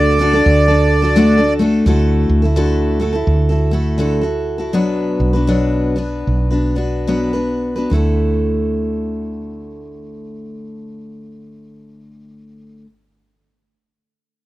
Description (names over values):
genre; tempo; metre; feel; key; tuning
acoustic folk duo or small band; 70-86 BPM; 4/4; swing 62% on 8ths; D major; A4 = 440 Hz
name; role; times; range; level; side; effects
accordion; melody; 0.0-1.5 s; D5; -16 LUFS; right 1 dB; none
picked steel-string acoustic guitar; accompaniment; 0.0-12.9 s; B2 to B4; -17 LUFS; left 1 dB; none
woody fretless electric bass; bass; 0.0-12.8 s; B1 to D2; -17 LUFS; right 1 dB; none
room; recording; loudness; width
small room ambience; dry, close 1970s-style studio recording; -13 LUFS; side -16 dB against mid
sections
0.0-1.9 A section; 1.9-7.9 B section; 7.9-11.4 C section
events
slowing down 1.9-7.9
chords
0.0 D; 1.9 Dadd9; 4.7 Bm; 7.9 Dadd9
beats
0.47 1.16 | 1.86 2.56 3.27 3.99 | 4.73 5.49 6.27 7.08 | 7.92 8.79 9.65 10.51